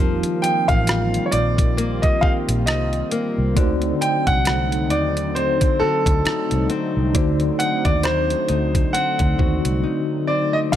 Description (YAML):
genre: contemporary R&B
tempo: 67 BPM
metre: 4/4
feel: swing 58% on 16ths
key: unclear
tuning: A4 = 440 Hz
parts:
  - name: mellow tine electric piano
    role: accompaniment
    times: 0.0-10.8 s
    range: D3 to C5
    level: -26 LUFS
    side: equal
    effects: medium stereo tremolo
  - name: warm analog pad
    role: sustained chords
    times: 0.0-10.8 s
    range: D3 to F4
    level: -27 LUFS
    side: right 1 dB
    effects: chorus
  - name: nylon-string guitar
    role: arpeggios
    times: 0.0-10.8 s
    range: D3 to C5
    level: -27 LUFS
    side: left 6 dB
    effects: none
  - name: vintage muted fingered electric bass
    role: bass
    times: 0.0-10.8 s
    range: F1 to Eb2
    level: -23 LUFS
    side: equal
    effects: none
  - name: clean 12-bit digital drum machine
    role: drums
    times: 0.2-10.8 s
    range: crash cymbal, hi-hat, kick drum, rim click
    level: -21 LUFS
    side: equal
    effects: none
  - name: clear grand piano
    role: melody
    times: 0.4-10.8 s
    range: A4 to G5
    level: -22 LUFS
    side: equal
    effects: none
room: light reverb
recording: none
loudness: -17 LUFS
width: side -11 dB against mid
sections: 0.0-10.7 A section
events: silent gap 9.8-10.7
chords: 0.0 F9sus4; 3.6 D7b9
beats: 0.88 1.78 2.67 | 3.57 4.46 5.36 6.25 | 7.15 8.04 8.94 9.84 | 10.73